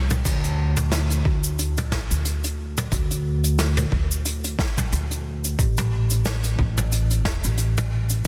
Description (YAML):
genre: sunset chillout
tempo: 90 BPM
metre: 4/4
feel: swing 56% on 16ths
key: unclear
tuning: A4 = 440 Hz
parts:
  - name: upright bass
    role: bass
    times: 0.0-8.2 s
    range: E1 to D2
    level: -25 LUFS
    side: equal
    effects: none
  - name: jazz brush drum kit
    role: drums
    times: 0.1-8.3 s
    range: cabasa, crash cymbal, hi-hat, snare drum, toms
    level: -29 LUFS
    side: equal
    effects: soft clipping on snare
  - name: electronic kick drum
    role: drums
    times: 0.3-8.3 s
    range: none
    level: -27 LUFS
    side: equal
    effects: overdrive
room: light reverb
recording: dense, heavily limited modern master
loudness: -23 LUFS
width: mono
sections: 0.3-8.3 A section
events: none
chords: none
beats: | 0.25 0.92 1.59 2.25 | 2.92 3.59 4.25 4.92 | 5.59 6.25 6.92 7.59 | 8.25